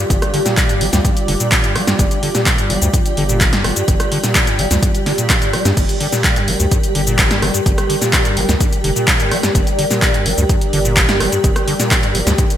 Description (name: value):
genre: acid house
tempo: 127 BPM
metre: 4/4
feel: straight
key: G minor pentatonic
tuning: A4 = 440 Hz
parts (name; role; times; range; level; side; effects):
- dark analog pad; sustained chords; 0.0-12.6 s; G3 to D5; -24 LUFS; right 1 dB; chorus, sidechain pumping
- deep acid bass; riff; 0.0-12.4 s; G2 to G3; -21 LUFS; equal; overdrive, lush chorus, sidechain pumping, ping-pong delay
- granular cloud pad; texture; 0.0-12.6 s; G4 to G5; -22 LUFS; equal; built-in reverb, ensemble chorus, sidechain pumping
- round analog bass; bass; 0.1-12.3 s; F1 to G2; -20 LUFS; equal; sidechain pumping
- electronic kick drum; drums; 0.1-12.5 s; none; -17 LUFS; equal; overdrive
- punchy analog drum machine; drums; 0.1-12.6 s; crash cymbal, handclaps, hi-hat, rim click, shaker, snare drum; -17 LUFS; equal; overdrive, gated reverb
room: light reverb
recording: bright 1980s-style digital production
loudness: -13 LUFS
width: side -11 dB against mid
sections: 0.0-12.6 A section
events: none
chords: 0.0 Gm7